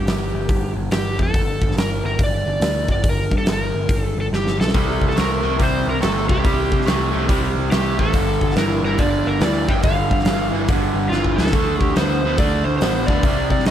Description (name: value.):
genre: blues rock power trio and southern rock.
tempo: 141 BPM.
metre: 4/4.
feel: swing 64% on 8ths.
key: G minor.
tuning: A4 = 440 Hz.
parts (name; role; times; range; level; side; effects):
overdriven slide guitar; melody; 0.0-13.7 s; F4 to G5; -24 LUFS; equal; none.
growling picked electric bass; bass; 0.0-13.7 s; G1 to C3; -23 LUFS; equal; overdrive.
huge arena drum kit; drums; 0.1-13.7 s; hi-hat, kick drum, snare drum; -20 LUFS; equal; none.
raw garage guitar; riff; 4.7-13.7 s; G2 to B3; -21 LUFS; right 1 dB; overdrive.
room: light reverb.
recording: none.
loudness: -16 LUFS.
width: side -10 dB against mid.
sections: 0.0-13.7 A section.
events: drum fill 4.3-4.7, 11.1-11.5.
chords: 0.0 Gm; 4.7 C5; 8.1 G5; 11.5 D5.